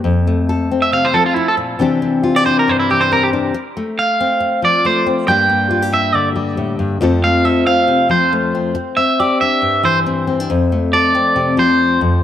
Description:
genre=highlife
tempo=138 BPM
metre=4/4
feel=swing 54% on 16ths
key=F major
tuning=A4 = 440 Hz
part: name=nylon-string guitar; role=accompaniment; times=0.0-12.2 s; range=F2 to A4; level=-16 LUFS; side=left 3 dB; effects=none
part: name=electric guitar at the edge of break-up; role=melody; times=0.8-12.0 s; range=E4 to G5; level=-15 LUFS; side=right 2 dB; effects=spring reverb
room=light reverb, small room ambience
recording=none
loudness=-13 LUFS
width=side -10 dB against mid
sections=0.1-12.2 A section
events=clean electric guitar solo 0.1-12.2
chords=0.1 F; 1.8 Cadd9; 3.5 F; 5.3 Gm; 7.0 F; 8.8 Cadd9; 10.5 F

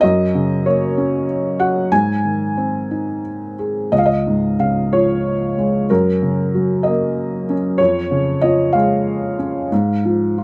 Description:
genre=classical, lyrical solo piano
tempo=62 BPM (dotted quarters)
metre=6/8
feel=uneven beats, rubato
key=Db major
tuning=A4 = 440 Hz
part: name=felt-muted upright piano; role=solo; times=0.0-10.4 s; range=Db2 to Ab5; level=-18 LUFS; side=equal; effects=none
room=light reverb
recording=close, detailed microphones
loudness=-18 LUFS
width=mono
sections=0.0-10.4 A section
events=none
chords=0.0 Gb; 1.9 Ab; 3.9 Db; 5.9 Gb; 7.8 Db/F; 9.7 Fm/Ab

